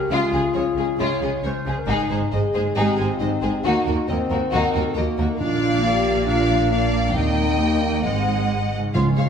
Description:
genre	cinematic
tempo	136 BPM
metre	4/4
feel	straight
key	unclear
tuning	A4 = 435 Hz
part	warm clarinet	second line	0.0-9.3 s	Ab3 to Db5	-27 LUFS	right 1 dB	none
part	mellow French horn section	sustained chords	0.0-8.5 s	Bb3 to C5	-25 LUFS	left 2 dB	none
part	concert harp	arpeggios	0.0-9.3 s	Ab2 to Bb4	-30 LUFS	left 4 dB	none
part	warm symphonic violin section	melody	0.1-9.3 s	F4 to G5	-26 LUFS	left 2 dB	none
part	warm symphonic violin section	second line	0.1-9.2 s	Eb4 to Eb5	-29 LUFS	left 2 dB	none
part	rich symphonic viola section	accompaniment	0.1-9.2 s	Ab3 to Bb3	-29 LUFS	right 1 dB	none
part	rich symphonic double bass section	bass	0.1-9.3 s	Ab1 to Eb2	-26 LUFS	right 3 dB	none
part	warm studio cello section	bass	0.1-9.3 s	Eb2 to Gb3	-28 LUFS	right 3 dB	none
part	timpani	percussion	5.4-6.0, 8.9-9.3 s	Bb2 to Db3	-26 LUFS	right 1 dB	none
room	wet recital hall reverb, RT60 1.5 s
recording	recorded in a church or concert hall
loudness	-18 LUFS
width	side -7 dB against mid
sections	0.0-9.0 A section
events	none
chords	0.0 Db; 1.9 Ab; 3.7 Ebm; 5.4 Bb; 7.2 Eb; 8.1 Ab7

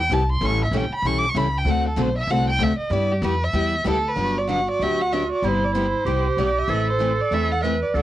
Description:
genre	acoustic string swing (jazz manouche)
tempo	191 BPM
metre	4/4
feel	swing 61% on 8ths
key	G major from 4.2 s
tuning	A4 = 435 Hz
part	warm violin	melody	0.0-8.0 s	G4 to D6	-24 LUFS	right 1 dB	none
part	upright bass	bass	0.0-8.0 s	G1 to G2	-24 LUFS	equal	none
part	picked steel-string acoustic guitar	accompaniment	0.1-8.0 s	C3 to B4	-27 LUFS	left 7 dB	none
part	picked steel-string acoustic guitar	accompaniment	0.1-8.0 s	C3 to B4	-30 LUFS	right 6 dB	none
part	clear clarinet	second line	4.2-8.0 s	E4 to B4	-25 LUFS	right 5 dB	none
room	light reverb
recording	home recording on cassette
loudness	-19 LUFS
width	side -13 dB against mid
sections	0.0-4.2 A section; 4.2-8.0 B section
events	violin solo 0.0-4.2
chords	0.4 A7; 1.7 D7; 2.9 G6; 4.2 Gmaj7; 5.4 Cmaj7/G; 6.7 Amadd9

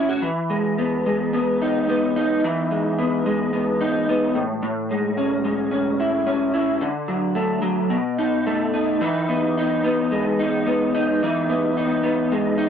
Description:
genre	indie pop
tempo	109 BPM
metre	4/4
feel	swing 55% on 16ths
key	E major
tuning	A4 = 441 Hz
part	electric guitar through a small old amp	solo	0.0-12.7 s	A2 to F#4	-19 LUFS	equal	ensemble chorus, vibrato effect
room	light reverb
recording	dry, close 1970s-style studio recording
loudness	-19 LUFS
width	side -8 dB against mid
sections	0.0-9.0 A section; 9.0-12.7 B section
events	none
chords	0.2 Emaj7; 4.4 Amaj7; 6.8 D; 7.9 B7; 9.0 Emaj7

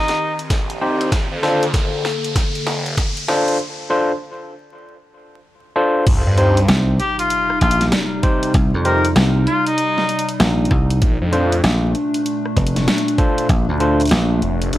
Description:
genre	glitch hop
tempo	97 BPM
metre	4/4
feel	swing 63% on 16ths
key	C dorian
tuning	A4 = 438 Hz
part	clear trumpet	melody	0.0-0.4, 7.0-10.3 s	Eb4 to Bb4	-21 LUFS	left 1 dB	tape echo
part	warbly tape-like pad	sustained chords	0.0-14.8 s	Bb2 to A4	-24 LUFS	left 1 dB	chorus, built-in reverb, sidechain pumping
part	riser and sub drop	sound effects	0.3-8.5 s	none	-28 LUFS	equal	none
part	dubstep drum kit	drums	0.1-14.8 s	crash cymbal, hi-hat, rim click, snare drum	-23 LUFS	equal	high-pass filter on hats, studio reverb, high-pass filter on snare, high-pass filter on cymbals
part	phased detuned saw bass	bass	0.5-6.7, 11.0-14.8 s	F1 to G2	-20 LUFS	equal	phaser, tube saturation, high-pass filter
part	electronic kick drum	drums	0.5-13.6 s	none	-18 LUFS	equal	studio reverb
part	overdriven tine electric piano	stabs	0.8-14.0 s	C4 to C5	-20 LUFS	equal	vintage 12-bit sampler grit, sidechain pumping, low-pass filter, tape echo
part	dry thumbed slap bass	bass	6.7-14.4 s	F1 to F2	-16 LUFS	equal	tube saturation
room	light reverb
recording	dry, gritty hardware recording, vinyl crackle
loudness	-15 LUFS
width	side -14 dB against mid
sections	0.0-6.1 A section; 6.1-14.8 B section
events	build-up 0.0-6.1; drum fill 0.0-3.6; riser 0.3-3.6; break 3.6-6.1; drop 6.1-14.8; impact 6.1-8.5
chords	0.0 Cm; 1.1 Bbmaj7; 6.1 Cm; 11.0 Bbmaj7

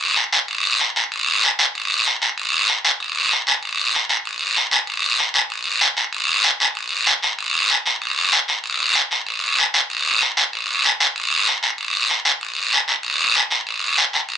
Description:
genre	latin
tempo	191 BPM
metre	4/4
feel	straight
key	none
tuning	none
part	guiro	percussion	0.2-14.4 s	none	-16 LUFS	equal	none
room	moderate studio reverb, RT60 0.6 s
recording	nothing above 10.7 kHz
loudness	-16 LUFS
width	side -9 dB against mid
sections	0.0-7.4 A section; 7.4-14.4 B section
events	none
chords	none

